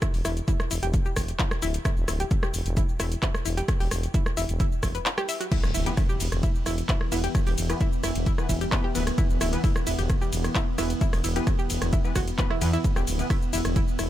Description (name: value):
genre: driving peak-time techno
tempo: 131 BPM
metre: 4/4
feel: straight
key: E minor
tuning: A4 = 440 Hz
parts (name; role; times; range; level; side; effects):
- analog pluck; riff; 0.0-14.0 s; E4 to E5; -33 LUFS; equal; chorus, vintage 12-bit sampler grit, sidechain pumping, ping-pong delay
- electronic kick drum; drums; 0.0-13.9 s; none; -25 LUFS; equal; none
- techno drum kit; drums; 0.0-14.1 s; crash cymbal, handclaps, hi-hat, ride cymbal, rim click, shaker; -31 LUFS; equal; sidechain pumping on perc, sidechain pumping on hats, sidechain pumping on cymbals
- growling FM bass; bass; 0.1-14.1 s; D1 to E2; -28 LUFS; equal; sidechain pumping
- deep dark ambient pad; drone; 6.4-14.1 s; E3 to B3; -33 LUFS; equal; chorus, built-in reverb, sidechain pumping
- impact; sound effects; 5.6-7.3 s; none; -36 LUFS; equal; none
- rave stab; stabs; 5.9-13.3 s; E3 to B4; -35 LUFS; left 2 dB; chorus, built-in reverb, cassette tape, sidechain pumping, ping-pong delay
room: digital ambience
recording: none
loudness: -23 LUFS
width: side -13 dB against mid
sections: 0.0-5.5 A section; 5.5-14.1 B section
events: kick drops out 5.1-5.5; drop 5.5-14.1; impact 5.5-7.3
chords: 0.0 E5